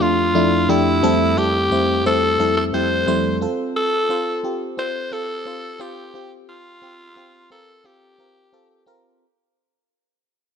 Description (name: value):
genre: pop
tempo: 88 BPM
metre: 4/4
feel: straight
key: F major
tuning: A4 = 440 Hz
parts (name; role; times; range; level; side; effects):
- raspy alto saxophone; melody; 0.0-8.9 s; E4 to C5; -21 LUFS; equal; ping-pong delay
- FM electric piano; accompaniment; 0.0-9.2 s; F2 to C5; -20 LUFS; left 1 dB; chorus, phaser
room: moderate plate reverb, RT60 2.5 s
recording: none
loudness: -17 LUFS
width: side -7 dB against mid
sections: 0.0-9.2 A section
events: fade-out 0.0-9.2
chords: 0.0 Dm/F; 1.0 Am7/F; 3.4 F; 6.1 Fsus2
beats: 0.35 | 1.03 1.71 2.40 3.08 | 3.76 4.44 5.12 5.80 | 6.49 7.17 7.85 8.53